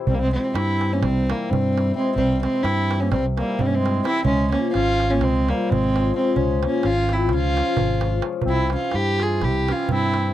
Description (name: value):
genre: balkan folk, Balkan wedding band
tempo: 258 BPM (eighths)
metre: 9/8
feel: straight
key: C phrygian dominant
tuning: A4 = 439 Hz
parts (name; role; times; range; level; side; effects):
- cimbalom; accompaniment; 0.0-10.3 s; E3 to F4; -27 LUFS; left 9 dB; none
- warm fiddle; melody; 0.1-10.3 s; Bb3 to Ab4; -23 LUFS; right 1 dB; none
- warm clarinet; second line; 0.1-10.3 s; G3 to F4; -28 LUFS; right 4 dB; none
- fingered electric bass; bass; 0.1-10.3 s; Ab1 to G2; -23 LUFS; equal; none
- darbuka; percussion; 0.1-10.3 s; none; -29 LUFS; right 6 dB; none
room: little or no reverb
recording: dry, close 1970s-style studio recording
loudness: -18 LUFS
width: side -13 dB against mid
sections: 0.1-10.3 A section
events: none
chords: 0.1 C; 4.3 Db; 8.5 C